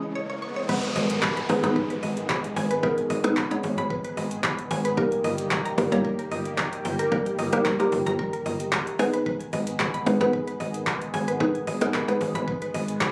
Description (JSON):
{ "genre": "dance-pop", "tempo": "112 BPM", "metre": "4/4", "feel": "straight", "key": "G# harmonic minor", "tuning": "A4 = 439 Hz", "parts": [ { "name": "mallet-like synth pluck", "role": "accompaniment", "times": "0.0-12.8 s", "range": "G3 to C#5", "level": "-27 LUFS", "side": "equal", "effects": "chorus, phaser, sidechain pumping" }, { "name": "filtered supersaw swell", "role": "sustained chords", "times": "0.0-13.1 s", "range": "C#3 to D#5", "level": "-34 LUFS", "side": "equal", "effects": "sidechain pumping" }, { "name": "riser and downlifter", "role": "sound effects", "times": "0.0-5.0 s", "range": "none", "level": "-36 LUFS", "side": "equal", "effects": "none" }, { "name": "mallet-like synth pluck", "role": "arpeggios", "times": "0.2-13.1 s", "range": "A#4 to C#6", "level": "-35 LUFS", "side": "equal", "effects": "chorus, sidechain pumping, digital delay" }, { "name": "smooth R&B drum kit", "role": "drums", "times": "0.7-13.1 s", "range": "crash cymbal, handclaps, hi-hat, kick drum, snare drum", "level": "-32 LUFS", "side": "equal", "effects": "none" }, { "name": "slap-like FM bass", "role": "bass", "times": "1.0-13.1 s", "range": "G1 to G#1", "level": "-34 LUFS", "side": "equal", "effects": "sidechain pumping" } ], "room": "light reverb", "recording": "recorded on a phone in the room, club reverb", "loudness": "-26 LUFS", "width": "mono", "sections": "0.7-13.1 A section", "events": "break 0.0-0.7; riser 0.0-0.7", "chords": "0.0 C#m; 0.7 G#m; 5.0 D#/G; 9.0 G#m" }